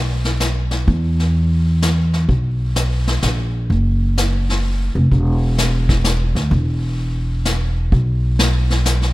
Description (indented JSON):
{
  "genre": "jazz piano trio",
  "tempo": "128 BPM",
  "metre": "3/4",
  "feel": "swing 66% on 8ths",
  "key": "unclear",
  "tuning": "A4 = 440 Hz",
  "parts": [
    { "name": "upright bass", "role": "bass", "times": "0.0-9.1 s", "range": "E1 to E2", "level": "-16 LUFS", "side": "equal", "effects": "none" },
    { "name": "vintage brush drum kit", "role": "drums", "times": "0.2-9.1 s", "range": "brushed snare drum, hi-hat, kick drum, snare drum", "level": "-21 LUFS", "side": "left 1 dB", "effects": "none" }
  ],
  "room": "little or no reverb",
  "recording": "rough home demo mix",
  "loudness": "-15 LUFS",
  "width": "side -18 dB against mid",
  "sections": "0.0-9.1 A section",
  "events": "none",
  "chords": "none"
}